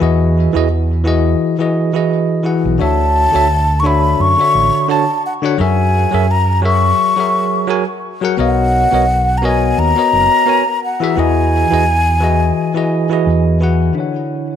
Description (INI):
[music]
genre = sunset chillout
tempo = 86 BPM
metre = 4/4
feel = swing 55% on 16ths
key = E lydian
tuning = A4 = 440 Hz
[part]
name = bell-like tine electric piano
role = accompaniment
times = 0.0-14.6 s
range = D3 to A5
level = -16 LUFS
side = moving between left 7 dB and right 7 dB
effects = auto-pan, low-pass filter, ping-pong delay
[part]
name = overdriven fingered electric bass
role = bass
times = 0.0-13.9 s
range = F#1 to F#2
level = -15 LUFS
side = right 1 dB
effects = none
[part]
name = mellow hollow concert flute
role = melody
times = 2.8-13.3 s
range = F#5 to C#6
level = -15 LUFS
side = left 2 dB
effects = tape echo
[sound]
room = moderate recital hall reverb, RT60 1.6 s, small room ambience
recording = none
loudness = -12 LUFS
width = side -9 dB against mid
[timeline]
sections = 0.0-14.0 A section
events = none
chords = 0.0 Emaj9; 2.8 Dmaj7; 5.6 F#7; 8.4 Bmaj7; 10.8 Emaj9; 14.0 Dmaj7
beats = | 0.01 0.71 1.41 2.11 | 2.80 3.50 4.20 4.90 | 5.59 6.29 6.99 7.69 | 8.39 9.08 9.78 10.48 | 11.18 11.87 12.57 13.27 | 13.97